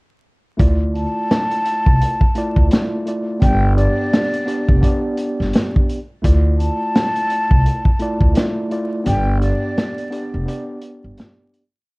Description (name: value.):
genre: hip hop, boom-bap hip-hop.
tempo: 85 BPM.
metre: 4/4.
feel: swing 60% on 16ths.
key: D dorian.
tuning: A4 = 439 Hz.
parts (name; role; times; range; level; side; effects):
mellow tine electric piano; accompaniment; 0.6-11.6 s; A3 to D5; -23 LUFS; equal; medium stereo tremolo, cassette tape, high-pass filter, low-pass filter.
upright bass; bass; 0.6-11.2 s; F1 to D2; -17 LUFS; equal; transformer saturation.
crunchy breakbeat drum kit; drums; 0.6-11.7 s; hi-hat, kick drum, snare drum; -16 LUFS; equal; none.
breathy mellow concert flute; melody; 0.9-10.6 s; D5 to A5; -23 LUFS; left 1 dB; high-pass filter, low-pass filter, tape echo.
room: little or no reverb.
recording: worn, warbling old tape, cassette tape, vinyl crackle, warbly pitch drift.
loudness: -15 LUFS.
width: side -28 dB against mid.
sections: 0.6-11.9 verse.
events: break 9.1-11.9; fade-out 9.1-11.9.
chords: 0.6 Dmadd9; 3.4 G; 6.2 Dmadd9; 9.1 G.